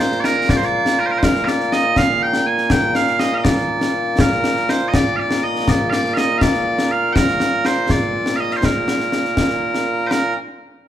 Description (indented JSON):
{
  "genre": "scottish traditional, Scottish pipe music",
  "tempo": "81 BPM (dotted quarters)",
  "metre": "6/8",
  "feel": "straight",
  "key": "Bb major",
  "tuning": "A4 = 439 Hz",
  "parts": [
    { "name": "loud bright bagpipes", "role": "melody", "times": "0.0-10.3 s", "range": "Bb2 to Ab5", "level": "-17 LUFS", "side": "right 1 dB", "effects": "none" },
    { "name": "concert snare drum and concert bass drum", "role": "drums", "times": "0.1-10.3 s", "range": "none", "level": "-19 LUFS", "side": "left 1 dB", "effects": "none" }
  ],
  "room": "wet large studio reverb, RT60 1.4 s",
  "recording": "band playing live in one room",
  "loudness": "-15 LUFS",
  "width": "side -11 dB against mid",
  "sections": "0.0-10.1 A section",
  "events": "none",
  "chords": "none"
}